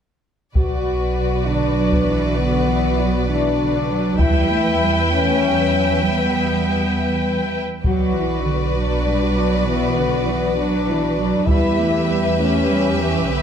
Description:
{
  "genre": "cinematic, epic orchestral film score",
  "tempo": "66 BPM (dotted quarters)",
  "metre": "6/8",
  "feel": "straight",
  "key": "B minor",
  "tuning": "A4 = 441 Hz",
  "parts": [
    { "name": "warm symphonic violin section", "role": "second line", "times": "0.5-13.4 s", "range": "B4", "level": "-26 LUFS", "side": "left 2 dB", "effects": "none" },
    { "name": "warm symphonic violin section", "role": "melody", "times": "0.6-13.4 s", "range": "D5 to E5", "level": "-29 LUFS", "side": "left 4 dB", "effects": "none" },
    { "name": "warm symphonic viola section", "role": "accompaniment", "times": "0.6-13.4 s", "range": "F#4 to G5", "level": "-26 LUFS", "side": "right 2 dB", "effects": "none" },
    { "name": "clear French horn section", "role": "sustained chords", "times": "0.6-13.4 s", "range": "B3 to F#4", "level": "-21 LUFS", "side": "left 4 dB", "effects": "none" },
    { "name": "dark studio double bass section", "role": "bass", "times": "0.6-13.4 s", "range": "B1 to E2", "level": "-23 LUFS", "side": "right 3 dB", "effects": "none" },
    { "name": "taiko ensemble", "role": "drums", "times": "0.6-12.6 s", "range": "none", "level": "-20 LUFS", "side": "equal", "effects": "none" },
    { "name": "dark studio cello section", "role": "bass", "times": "1.5-13.4 s", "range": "D3 to A3", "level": "-23 LUFS", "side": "right 3 dB", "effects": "none" }
  ],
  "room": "moderate concert hall reverb, RT60 2.0 s",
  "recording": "none",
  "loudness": "-16 LUFS",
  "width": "side -8 dB against mid",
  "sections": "0.6-13.4 A section",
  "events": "none",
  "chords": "0.6 Bm; 4.2 Em; 7.8 Bm; 11.5 Em",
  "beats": "| 0.56 1.47 | 2.38 3.29 | 4.20 5.11 | 6.02 6.93 | 7.84 8.75 | 9.66 10.57 | 11.48 12.39 | 13.30"
}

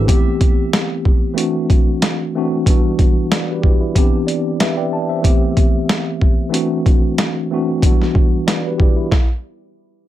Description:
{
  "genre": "hip hop, boom-bap hip-hop",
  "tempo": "93 BPM",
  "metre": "4/4",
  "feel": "swing 57% on 16ths",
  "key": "E minor",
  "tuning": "A4 = 440 Hz",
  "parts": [
    { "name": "mellow tine electric piano", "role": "accompaniment", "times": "0.0-9.3 s", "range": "E3 to A5", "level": "-18 LUFS", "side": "equal", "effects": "medium stereo tremolo, cassette tape, high-pass filter, low-pass filter, plate reverb" },
    { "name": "boom bap sampler-style drum kit", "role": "drums", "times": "0.1-9.3 s", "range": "hi-hat, kick drum, snare drum", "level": "-14 LUFS", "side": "equal", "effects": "none" }
  ],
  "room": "light reverb",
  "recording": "none",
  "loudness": "-14 LUFS",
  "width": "side -13 dB against mid",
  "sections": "0.1-10.1 A section",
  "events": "tine electric piano fill 4.0-5.2; stop 9.1-10.1",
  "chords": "0.1 Am7; 1.4 D7; 2.7 Em7; 4.0 Cmaj7; 5.2 Am7; 6.5 D7; 7.8 Em7; 9.1 N.C.",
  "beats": "| 0.08 0.73 1.37 2.02 | 2.66 3.31 3.96 4.60 | 5.25 5.89 6.54 7.18 | 7.83 8.47 9.12"
}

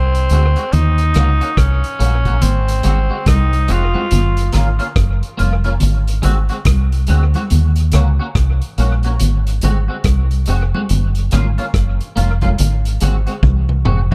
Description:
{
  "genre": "roots reggae",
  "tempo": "71 BPM",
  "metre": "4/4",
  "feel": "swing 61% on 16ths",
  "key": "unclear",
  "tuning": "A4 = 440 Hz",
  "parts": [
    { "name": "raspy tenor saxophone", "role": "melody", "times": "0.0-4.6 s", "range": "C4 to F4", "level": "-23 LUFS", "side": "equal", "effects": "dub echo" },
    { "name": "deep dub fingered electric bass", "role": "bass", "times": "0.0-14.1 s", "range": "F1 to Eb2", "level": "-16 LUFS", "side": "equal", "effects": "none" },
    { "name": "vintage drum kit", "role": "drums", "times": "0.1-14.1 s", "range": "hi-hat, kick drum, rim click, toms", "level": "-23 LUFS", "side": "equal", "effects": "none" },
    { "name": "clean electric guitar", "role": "accompaniment", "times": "0.3-14.1 s", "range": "Ab3 to Gb4", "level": "-28 LUFS", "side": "equal", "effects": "ensemble chorus, dub echo" },
    { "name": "congas", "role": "percussion", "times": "0.7-13.7 s", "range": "none", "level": "-26 LUFS", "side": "equal", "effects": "none" }
  ],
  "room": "small room ambience",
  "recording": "echo-heavy mix",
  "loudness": "-15 LUFS",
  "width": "mono",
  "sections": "0.0-14.1 A section",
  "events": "drum fill 13.4-14.1",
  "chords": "0.0 Ab7; 0.7 Ebm7; 2.4 Ab7; 4.1 Gbmaj7; 5.8 Ab7; 7.5 Ebm7; 9.2 Ab7; 10.9 Gbmaj7; 12.6 Ab7",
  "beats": "| 0.72 1.57 2.42 3.26 | 4.11 4.96 5.81 6.66 | 7.50 8.35 9.20 10.05 | 10.89 11.74 12.59 13.43"
}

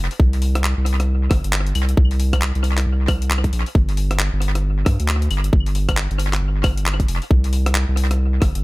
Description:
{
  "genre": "UK garage, two-step garage",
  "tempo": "135 BPM",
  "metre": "4/4",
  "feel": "swing 61% on 16ths",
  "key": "unclear",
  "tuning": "A4 = 440 Hz",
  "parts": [
    { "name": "saturated sub bass", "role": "bass", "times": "0.0-8.6 s", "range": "F1 to G2", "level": "-19 LUFS", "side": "equal", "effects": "none" },
    { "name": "breakbeat sampler-style drum kit", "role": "drums", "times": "0.1-8.6 s", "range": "claves, handclaps, hi-hat, rim click", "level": "-25 LUFS", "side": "equal", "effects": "tape echo" },
    { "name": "electronic kick drum", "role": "drums", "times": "0.2-8.5 s", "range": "none", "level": "-16 LUFS", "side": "equal", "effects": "none" }
  ],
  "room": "digital ambience",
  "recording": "echo-heavy mix",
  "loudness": "-16 LUFS",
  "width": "side -22 dB against mid",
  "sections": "0.0-8.6 A section",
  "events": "none",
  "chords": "none",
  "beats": "| 0.20 0.64 1.08 1.53 | 1.97 2.42 2.86 3.31 | 3.75 4.20 4.64 5.08 | 5.53 5.97 6.42 6.86 | 7.31 7.75 8.20"
}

